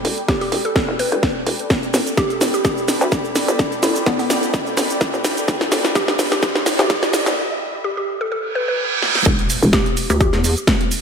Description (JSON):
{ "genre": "bass house", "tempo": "127 BPM", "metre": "4/4", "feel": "swing 54% on 16ths", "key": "unclear", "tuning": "A4 = 440 Hz", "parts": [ { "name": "hollow knocking FM bass", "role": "bass", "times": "0.0-10.1 s", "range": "E1 to D2", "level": "-21 LUFS", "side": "equal", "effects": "overdrive, sidechain pumping, high-pass filter" }, { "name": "house drum kit", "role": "drums", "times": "0.0-11.0 s", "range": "hi-hat, shaker, snare drum", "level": "-19 LUFS", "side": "equal", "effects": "none" }, { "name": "airy breathy pad", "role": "texture", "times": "0.0-7.4 s", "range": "A4 to B5", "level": "-27 LUFS", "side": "equal", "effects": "chorus, sidechain pumping" }, { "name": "mallet-like synth pluck", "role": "melody", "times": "0.3-10.3 s", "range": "B3 to B4", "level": "-24 LUFS", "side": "equal", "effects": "chorus, ping-pong delay" }, { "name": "electronic kick drum", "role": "drums", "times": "0.3-10.8 s", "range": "none", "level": "-21 LUFS", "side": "equal", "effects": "overdrive" }, { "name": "riser, reverse cymbal and impact", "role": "sound effects", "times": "3.8-11.0 s", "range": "none", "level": "-25 LUFS", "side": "right 2 dB", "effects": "none" }, { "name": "pulsing pluck wobble bass", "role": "bass", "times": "10.1-10.6 s", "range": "D2 to E2", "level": "-18 LUFS", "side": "equal", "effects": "chorus, tube saturation, sidechain pumping" } ], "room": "wet lush hall reverb, RT60 1.9 s", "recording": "dreamy mix soaked in reverb, high-pass filter", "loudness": "-16 LUFS", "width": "side -6 dB against mid", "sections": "0.0-9.3 A section; 9.3-11.0 B section", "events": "build-up 0.0-9.3; drum fill 0.0-7.4, 9.0; filter sweep 0.0-9.3; break 7.4-9.3; reverse cymbal 8.5-9.3; drop 9.3-11.0; impact 9.3-11.0", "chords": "0.0 Em; 1.7 G; 9.3 E7(no3)", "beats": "0.28 0.76 1.23 | 1.70 2.17 2.65 3.12 | 3.59 4.06 4.54 5.01 | 5.48 5.95 6.43 6.90 | 7.37 7.84 8.32 8.79 | 9.26 9.73 10.21 10.68" }